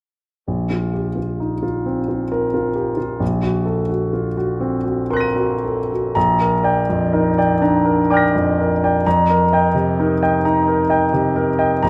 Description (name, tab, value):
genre	classical, impressionist solo piano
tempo	37-45 BPM (dotted quarters)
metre	6/8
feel	rubato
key	Bb major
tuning	A4 = 444 Hz
part	clear grand piano	solo	0.5-11.9 s	Bb1 to Eb7	-18 LUFS	equal	none
room	wet recital hall reverb, RT60 1.6 s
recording	none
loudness	-18 LUFS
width	mono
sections	0.5-6.2 A section; 6.2-11.9 B section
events	none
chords	0.5 Bbsus2; 3.2 Ebm6/Bb; 6.2 Bb6; 9.1 F9sus4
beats	| 0.48 1.86 | 3.21 4.61 | 6.16 7.62 | 9.05 10.44 | 11.82